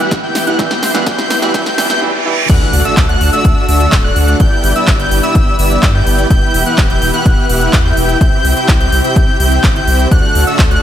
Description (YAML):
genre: EDM, festival progressive house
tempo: 126 BPM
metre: 4/4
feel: straight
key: unclear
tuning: A4 = 436 Hz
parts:
  - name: felt-muted upright piano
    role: accompaniment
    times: 0.0-2.3 s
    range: E3 to E4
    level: -20 LUFS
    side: right 3 dB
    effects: vintage 12-bit sampler grit, sidechain pumping, ping-pong delay
  - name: lush unison pad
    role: sustained chords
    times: 0.0-10.8 s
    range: E2 to C6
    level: -21 LUFS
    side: left 1 dB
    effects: chorus, vintage 12-bit sampler grit, sidechain pumping
  - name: wide unison lead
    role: arpeggios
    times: 0.0-10.8 s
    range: E6 to G6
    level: -17 LUFS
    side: left 1 dB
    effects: sidechain pumping, ping-pong delay
  - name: dense compressed supersaw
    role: riff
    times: 0.0-10.8 s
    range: A3 to G5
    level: -18 LUFS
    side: right 1 dB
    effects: sidechain pumping, low-pass filter, ping-pong delay
  - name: riser, reverse cymbal and impact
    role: sound effects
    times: 0.3-4.4 s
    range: none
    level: -22 LUFS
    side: right 2 dB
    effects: none
  - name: big-room dance drum kit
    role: drums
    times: 0.1-10.8 s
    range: crash cymbal, handclaps, hi-hat, snare drum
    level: -19 LUFS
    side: equal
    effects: overdrive
  - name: electronic kick drum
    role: drums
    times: 0.1-10.7 s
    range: none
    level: -12 LUFS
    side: equal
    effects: none
  - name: saturated sub bass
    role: bass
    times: 2.5-10.8 s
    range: D1 to G2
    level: -15 LUFS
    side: equal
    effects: tube saturation, sidechain pumping
room: light reverb, digital ambience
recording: high-pass filter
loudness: -9 LUFS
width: side -10 dB against mid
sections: 0.0-2.5 A section; 2.5-10.8 B section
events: build-up 0.0-2.5; drum fill 0.0-2.0; filter sweep on analog synth pad 0.0-2.5; filter sweep 0.0-2.5; reverse cymbal 1.6-2.5; drop 2.5-10.8; impact 2.5-4.4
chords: 0.0 Em; 0.6 C; 2.5 D; 4.4 G6; 6.3 Em; 8.2 C; 10.1 D